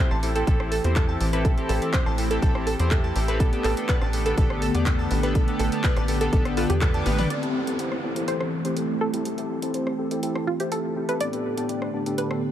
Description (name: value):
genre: progressive house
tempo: 123 BPM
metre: 4/4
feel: straight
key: A minor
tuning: A4 = 440 Hz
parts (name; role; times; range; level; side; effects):
- evolving wavetable pad; sustained chords; 0.3-12.5 s; A2 to G4; -30 LUFS; equal; chorus, built-in reverb, phaser, sidechain pumping
- glassy wavetable pluck; arpeggios; 0.0-7.3 s; A4 to A5; -31 LUFS; right 2 dB; chorus, cassette tape, sidechain pumping, dub echo
- chorused polysynth; stabs; 0.0-12.4 s; A2 to D5; -28 LUFS; left 1 dB; cassette tape, sidechain pumping, dub echo
- tight sequencer bass; bass; 0.1-7.3 s; A1 to E2; -26 LUFS; equal; sidechain pumping
- big-room dance drum kit; drums; 0.1-12.4 s; handclaps, hi-hat, rim click, toms; -33 LUFS; equal; overdrive
- electronic kick drum; drums; 0.5-6.9 s; none; -22 LUFS; equal; none
- wide unison pluck; melody; 6.6-12.5 s; F4 to D5; -31 LUFS; right 1 dB; dub echo
- downlifter; sound effects; 7.4-11.2 s; none; -35 LUFS; left 1 dB; none
room: light reverb, digital ambience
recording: none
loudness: -22 LUFS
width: side -11 dB against mid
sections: 0.0-7.3 A section; 7.3-12.5 B section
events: band accent 6.8; drum fill 7.1; filter sweep on analog polysynth 7.3-12.5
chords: 0.0 Am7; 3.4 Gadd9/A; 7.3 Am7; 11.2 Gadd9/A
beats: 0.47 0.96 | 1.45 1.94 2.42 2.91 | 3.40 3.89 4.38 4.86 | 5.35 5.84 6.33 6.82 | 7.30 7.79 8.28 8.77 | 9.25 9.74 10.23 10.72 | 11.21 11.69 12.18